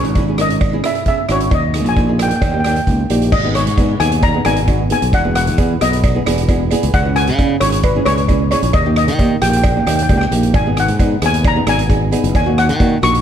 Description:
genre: calypso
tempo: 133 BPM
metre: 4/4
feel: straight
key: G# minor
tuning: A4 = 442 Hz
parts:
  - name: steel pan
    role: melody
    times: 0.0-13.2 s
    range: B4 to C#6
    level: -19 LUFS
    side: left 2 dB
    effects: slapback echo
  - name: flamenco guitar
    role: accompaniment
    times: 0.0-13.2 s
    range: A#3 to A#4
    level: -20 LUFS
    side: right 2 dB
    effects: slapback echo
  - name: modern bright fingered electric bass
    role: bass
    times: 0.0-13.2 s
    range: E1 to D#3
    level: -18 LUFS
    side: equal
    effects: none
  - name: street-band drum kit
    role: drums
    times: 0.0-13.2 s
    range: crash cymbal, hi-hat, kick drum, rim click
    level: -18 LUFS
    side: equal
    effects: none
  - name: cowbell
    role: percussion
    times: 0.2-12.9 s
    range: none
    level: -25 LUFS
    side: right 11 dB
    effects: none
room: moderate scoring stage reverb, RT60 1.6 s, small room ambience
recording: big arena sound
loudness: -12 LUFS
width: side -9 dB against mid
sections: 0.0-3.3 A section; 3.3-13.2 B section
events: none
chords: 0.0 C#m; 1.5 D#sus4; 2.4 D#; 3.3 G#m; 5.1 Eadd9; 6.9 C#m; 8.7 D#; 10.5 G#m; 12.3 D#m7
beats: 0.16 0.61 1.06 | 1.52 1.97 2.42 2.87 | 3.33 3.78 4.23 4.68 | 5.13 5.58 6.03 6.48 | 6.93 7.39 7.84 8.29 | 8.74 9.19 9.64 10.09 | 10.54 10.99 11.45 11.90 | 12.35 12.80

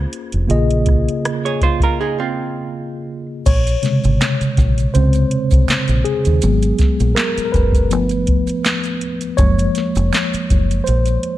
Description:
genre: R&B, neo-soul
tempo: 81 BPM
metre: 4/4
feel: swing 54% on 16ths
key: Bb minor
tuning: A4 = 439 Hz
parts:
  - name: mellow tine electric piano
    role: accompaniment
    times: 0.0-11.4 s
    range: C3 to Eb5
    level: -19 LUFS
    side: left 1 dB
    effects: slow stereo tremolo
  - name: deep dub fingered electric bass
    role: bass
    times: 0.0-11.2 s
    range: F1 to Eb2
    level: -16 LUFS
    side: equal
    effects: none
  - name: soft vintage rhythm box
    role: drums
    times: 0.1-11.4 s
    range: crash cymbal, handclaps, hi-hat, kick drum, rim click, snare drum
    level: -18 LUFS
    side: equal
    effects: none
  - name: archtop guitar, miked and amplified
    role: second line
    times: 1.5-3.3 s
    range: C4 to Db5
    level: -21 LUFS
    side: right 7 dB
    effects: none
  - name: maracas and finger snaps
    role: percussion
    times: 3.5-11.2 s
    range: none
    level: -30 LUFS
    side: right 9 dB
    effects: none
room: light reverb, digital ambience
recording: dark, warm production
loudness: -14 LUFS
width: side -14 dB against mid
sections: 0.0-3.5 A section; 3.5-11.4 B section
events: break 2.0-3.5; tine electric piano solo 3.5-11.4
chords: 0.0 Bbm7; 3.5 Bbm9; 6.4 Abm9; 7.9 G9; 9.4 Gbmaj7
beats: | 0.49 1.24 1.98 2.72 | 3.46 4.20 4.94 5.68 | 6.42 7.16 7.90 8.64 | 9.38 10.12 10.87

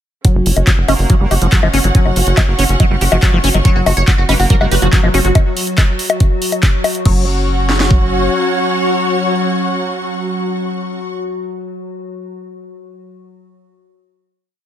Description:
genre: psychedelic trance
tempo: 141 BPM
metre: 4/4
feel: straight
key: unclear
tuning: A4 = 437 Hz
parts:
  - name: liquid acid bass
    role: riff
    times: 0.2-7.3 s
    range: E#3 to G4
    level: -19 LUFS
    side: moving between left 3 dB and right 3 dB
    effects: chorus, auto-pan, sidechain pumping, tape echo
  - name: drum and bass drum kit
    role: drums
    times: 0.2-8.0 s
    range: kick drum, snare drum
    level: -12 LUFS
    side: equal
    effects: overdrive
  - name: drum and bass drum kit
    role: drums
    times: 0.2-7.1 s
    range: bongos, crash cymbal, handclaps, hi-hat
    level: -18 LUFS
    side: left 2 dB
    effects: overdrive
  - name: rich studio string section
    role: texture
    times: 0.2-11.2 s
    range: C#4 to C#6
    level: -21 LUFS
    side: equal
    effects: sidechain pumping
  - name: tight sequencer bass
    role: bass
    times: 0.4-8.3 s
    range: F#1 to G1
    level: -15 LUFS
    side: equal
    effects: none
  - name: metallic wobble bass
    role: second line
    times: 0.9-4.7 s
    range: A#3 to C#4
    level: -31 LUFS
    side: right 4 dB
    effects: none
  - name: supersaw stab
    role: melody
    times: 3.6-11.0 s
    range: F#4 to C#5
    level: -21 LUFS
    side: right 2 dB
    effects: phaser, sidechain pumping, tape echo
  - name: evolving wavetable pad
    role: sustained chords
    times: 4.2-11.0 s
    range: F#3 to F#4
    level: -21 LUFS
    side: left 2 dB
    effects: chorus, built-in reverb, vintage 12-bit sampler grit, sidechain pumping
room: light reverb, digital ambience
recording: none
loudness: -11 LUFS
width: side -11 dB against mid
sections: 0.2-7.1 groove; 7.1-10.5 final chord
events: none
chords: 0.2 F#5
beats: | 0.25 0.67 1.10 1.52 | 1.95 2.37 2.80 3.23 | 3.65 4.08 4.50 4.93 | 5.35 5.78 6.20 6.63 | 7.05 7.48 7.91 8.33 | 8.76 9.18 9.61 10.03

